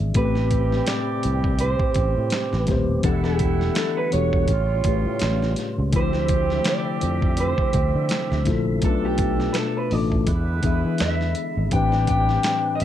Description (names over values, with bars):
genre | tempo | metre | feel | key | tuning
R&B, neo-soul | 83 BPM | 4/4 | swing 55% on 16ths | A minor | A4 = 441 Hz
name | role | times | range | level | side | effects
mellow tine electric piano | accompaniment | 0.0-12.8 s | A2 to F#5 | -26 LUFS | left 6 dB | medium stereo tremolo
sustaining fretless electric bass | bass | 0.0-12.8 s | D#1 to E3 | -24 LUFS | equal | none
tonewheel organ | sustained chords | 0.1-12.8 s | B2 to F#5 | -34 LUFS | right 2 dB | overdrive, chorus vibrato, slow rotary speaker
warm horn section | stabs | 0.1-12.8 s | B2 to B4 | -33 LUFS | right 5 dB | slapback echo
dusty soul sampler-style drum kit | drums | 0.1-12.8 s | handclaps, hi-hat, kick drum, snare drum | -25 LUFS | equal | none
electric guitar through a small old amp | melody | 0.2-12.8 s | G4 to G5 | -26 LUFS | right 3 dB | spring reverb, slapback echo
room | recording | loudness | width
light reverb | dark, warm production | -19 LUFS | side -11 dB against mid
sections
0.1-12.8 A section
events
none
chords
0.1 Am9; 3.0 Em11; 4.5 A7b13; 5.9 Dm9; 8.8 Bm7b5; 10.3 E7; 11.7 Am11